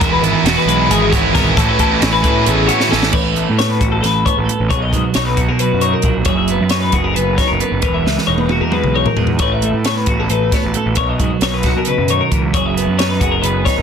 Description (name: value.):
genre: math rock and midwest emo.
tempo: 268 BPM (eighths).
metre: 7/8.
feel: straight.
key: unclear.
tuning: A4 = 439 Hz.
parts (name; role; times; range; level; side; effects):
twelve-string electric guitar; accompaniment; 0.0-13.8 s; A2 to C#5; -18 LUFS; right 7 dB; spring reverb.
twelve-string electric guitar; arpeggios; 0.0-13.8 s; F#4 to E5; -19 LUFS; left 9 dB; wide subtle chorus, plate reverb.
biting overdriven guitar; riff; 0.0-3.1 s; A2 to E4; -16 LUFS; right 3 dB; none.
fuzz picked electric bass; bass; 0.0-13.8 s; E1 to B2; -19 LUFS; equal; overdrive.
compact cocktail drum kit; drums; 0.0-13.8 s; crash cymbal, hi-hat, kick drum, snare drum, toms; -19 LUFS; equal; none.
room: light reverb.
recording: dense, heavily limited modern master.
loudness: -12 LUFS.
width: side -7 dB against mid.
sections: 0.0-3.1 A section; 3.1-13.8 B section.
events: drum fill 2.8-3.1, 8.1-9.4.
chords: 0.0 Eadd9; 1.6 A69; 4.7 Bmaj9; 6.3 F#13sus4; 7.8 Emaj9#11; 9.4 A69; 11.0 Bmaj9; 12.5 F#13sus4.